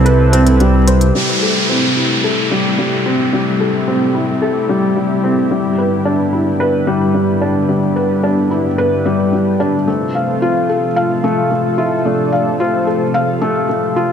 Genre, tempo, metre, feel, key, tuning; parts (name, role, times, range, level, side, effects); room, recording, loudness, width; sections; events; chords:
piano and strings electronica; 110 BPM; 4/4; straight; A minor; A4 = 435 Hz
warm velvety synth lead; melody; 0.0-0.6, 9.9-13.4 s; C5 to F5; -24 LUFS; equal; chorus, tremolo, ping-pong delay
lush unison pad; sustained chords; 0.0-14.1 s; G2 to A4; -19 LUFS; equal; chorus
felt-muted upright piano; riff; 0.0-14.1 s; G3 to F5; -15 LUFS; left 1 dB; low-pass filter, ping-pong delay
dark detuned saw bass; bass; 0.0-1.1 s; C2; -11 LUFS; equal
electronic hi-hat; drums; 0.1-1.1 s; -23 LUFS; left 2 dB; overdrive, studio reverb
downlifter; sound effects; 1.1-5.5 s; -20 LUFS; right 1 dB
moderate huge ambient reverb, RT60 7.5 s; -12 LUFS; side -8 dB against mid
0.0-1.1 A section; 1.1-14.1 B section
filter sweep on felt piano 1.1-14.1
0.0 Cmaj7; 1.1 Am7; 5.5 Em7/G; 9.9 F